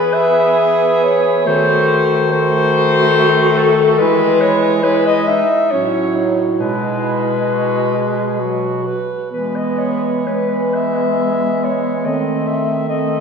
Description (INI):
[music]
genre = classical, lyrical piece for single-reed quartet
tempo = 60-73 BPM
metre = 3/4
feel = rubato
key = E major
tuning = A4 = 440 Hz
[part]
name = warm clarinet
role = melody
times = 0.0-13.2 s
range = A4 to E5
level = -17 LUFS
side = left 4 dB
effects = none
[part]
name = clear alto saxophone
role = second line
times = 0.0-13.2 s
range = B3 to B4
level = -20 LUFS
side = right 4 dB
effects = none
[part]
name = mellow tenor saxophone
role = accompaniment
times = 0.0-13.2 s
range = F#3 to B3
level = -20 LUFS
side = equal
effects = none
[part]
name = clear bass clarinet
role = bass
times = 0.0-13.2 s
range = A2 to E3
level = -21 LUFS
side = right 1 dB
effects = none
[sound]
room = wet concert hall reverb, RT60 2.0 s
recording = heard from further back in the room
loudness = -13 LUFS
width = side -6 dB against mid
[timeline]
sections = 0.0-13.2 A section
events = none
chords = 0.0 E; 1.5 D#dim7; 4.0 E; 5.7 F#m/A; 6.6 E/B; 8.4 B5; 9.3 E; 12.1 D#dim7(no3)